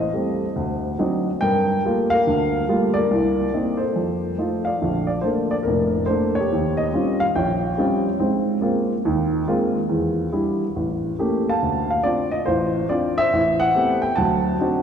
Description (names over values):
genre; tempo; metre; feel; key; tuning
solo jazz; 141 BPM; 4/4; swing 68% on 8ths, rubato; G minor, Bb major from 4.8 s; A4 = 440 Hz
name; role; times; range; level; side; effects
warm upright piano; solo; 0.0-14.8 s; F1 to A5; -19 LUFS; equal; none
room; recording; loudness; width
wet church reverb, RT60 3.4 s; recorded in a church or concert hall; -19 LUFS; side -7 dB against mid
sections
0.0-4.8 A section; 4.8-14.8 B section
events
none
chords
0.0 Am7b5; 0.6 D7b9; 1.4 Gm9; 3.1 Cm7; 3.9 F7; 4.8 Bbmaj7; 6.5 Eb13; 8.2 Ab69; 9.9 Em7; 10.8 A7b9; 11.6 Dm7; 13.3 Am9; 14.2 D7b9